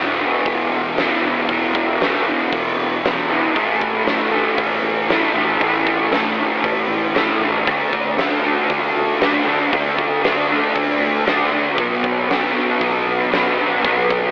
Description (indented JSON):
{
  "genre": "rock, shoegaze and dream pop",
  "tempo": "116 BPM",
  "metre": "4/4",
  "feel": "straight",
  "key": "unclear",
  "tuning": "A4 = 440 Hz",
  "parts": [
    { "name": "fuzz guitar", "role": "riff", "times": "0.0-14.3 s", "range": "E2 to D4", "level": "-16 LUFS", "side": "equal", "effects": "distortion, analog chorus, cassette tape" },
    { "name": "picked electric bass", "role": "bass", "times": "0.0-14.3 s", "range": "E1 to D2", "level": "-33 LUFS", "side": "equal", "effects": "none" },
    { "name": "huge arena drum kit", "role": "drums", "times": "0.5-14.2 s", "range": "hi-hat, kick drum, snare drum", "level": "-21 LUFS", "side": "equal", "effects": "cassette tape" }
  ],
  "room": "moderate studio reverb, RT60 0.5 s",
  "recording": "home recording on cassette, telephone sound",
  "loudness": "-15 LUFS",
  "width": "side -29 dB against mid",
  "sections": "0.0-14.3 A section",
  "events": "none",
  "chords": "0.0 E5; 3.5 A5; 7.7 D5; 11.8 B5",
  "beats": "0.45 0.97 | 1.48 2.00 2.51 3.03 | 3.55 4.06 4.58 5.09 | 5.61 6.12 6.64 7.15 | 7.67 8.18 8.70 9.21 | 9.73 10.24 10.76 11.27 | 11.78 12.30 12.81 13.32 | 13.84"
}